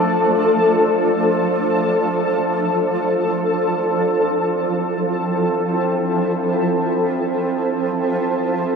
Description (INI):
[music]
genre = ambient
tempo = free time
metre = none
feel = none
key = F major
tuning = A4 = 444 Hz
[part]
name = shimmering ambient pad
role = solo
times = 0.0-8.8 s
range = F3 to A4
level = -16 LUFS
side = equal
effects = chorus, built-in reverb, analog delay
[sound]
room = wet spring reverb, RT60 2.4 s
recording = echo-heavy mix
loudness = -16 LUFS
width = side -5 dB against mid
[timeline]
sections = 0.0-3.3 A section; 3.3-8.8 B section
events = none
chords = 0.0 Fmaj7